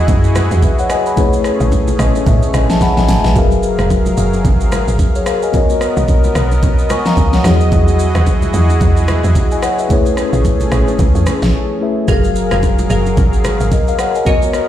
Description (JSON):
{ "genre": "amapiano", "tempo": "110 BPM", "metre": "4/4", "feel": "swing 58% on 16ths", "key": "F# major", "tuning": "A4 = 440 Hz", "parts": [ { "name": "mellow tine electric piano", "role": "accompaniment", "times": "0.0-14.7 s", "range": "F#3 to C#6", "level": "-17 LUFS", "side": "left 4 dB", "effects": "medium stereo tremolo" }, { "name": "warm analog pad", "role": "sustained chords", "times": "0.0-14.7 s", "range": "F#3 to E#5", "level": "-21 LUFS", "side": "right 1 dB", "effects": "chorus, sidechain pumping" }, { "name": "woody log drum bass", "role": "bass", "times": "0.0-13.7 s", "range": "E#1 to A2", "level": "-14 LUFS", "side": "equal", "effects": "none" }, { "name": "smooth R&B drum kit", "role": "drums", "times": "0.1-14.7 s", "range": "hi-hat, kick drum, rim click, shaker, snare drum", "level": "-16 LUFS", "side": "equal", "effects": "none" }, { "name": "congas and bongos", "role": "percussion", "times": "0.1-14.5 s", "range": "none", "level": "-23 LUFS", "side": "right 2 dB", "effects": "none" }, { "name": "glassy wavetable pluck", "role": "stabs", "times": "12.1-14.4 s", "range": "G#4 to E#5", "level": "-24 LUFS", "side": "right 2 dB", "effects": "chorus, tape echo" } ], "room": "digital ambience", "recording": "played on a big sound system in a bare room, stone room reverb", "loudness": "-11 LUFS", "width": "side -12 dB against mid", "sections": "0.0-14.7 A section", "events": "tine electric piano fill 1.7-3.4; drum fill 2.8-3.4; break 11.5-12.1", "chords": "0.0 Emaj9; 1.2 Amaj9; 3.4 F#maj9; 5.5 Bmaj9; 7.4 Emaj9; 9.9 Amaj9; 12.1 F#maj9" }